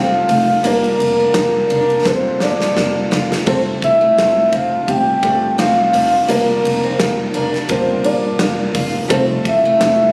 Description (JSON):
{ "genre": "piano-driven pop", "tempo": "85 BPM", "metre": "4/4", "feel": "swing 56% on 16ths", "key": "unclear", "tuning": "A4 = 443 Hz", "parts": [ { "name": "soft octave-layered synth lead", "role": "melody", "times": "0.0-10.1 s", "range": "Bb4 to G5", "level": "-17 LUFS", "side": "equal", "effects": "chorus, tremolo" }, { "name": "warm upright piano", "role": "accompaniment", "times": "0.0-10.1 s", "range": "G3 to C5", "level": "-22 LUFS", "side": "equal", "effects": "none" }, { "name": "picked steel-string acoustic guitar", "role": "riff", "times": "0.0-10.0 s", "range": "A3 to F4", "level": "-28 LUFS", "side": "equal", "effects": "none" }, { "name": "upright bass", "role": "bass", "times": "0.0-10.1 s", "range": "F1 to G1", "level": "-29 LUFS", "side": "equal", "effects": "none" }, { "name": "huge arena drum kit", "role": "drums", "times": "0.3-10.0 s", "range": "hi-hat, kick drum, ride cymbal, snare drum, splash cymbal", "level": "-25 LUFS", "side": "equal", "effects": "none" } ], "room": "light reverb", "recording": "recorded on a phone in the room, club reverb, compression", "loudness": "-15 LUFS", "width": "mono", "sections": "0.0-10.1 A section", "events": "drum fill 2.1-3.5", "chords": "0.0 Fadd9; 0.6 Bb6/F; 3.5 Fadd9; 6.3 Bb6/F; 9.1 Fadd9" }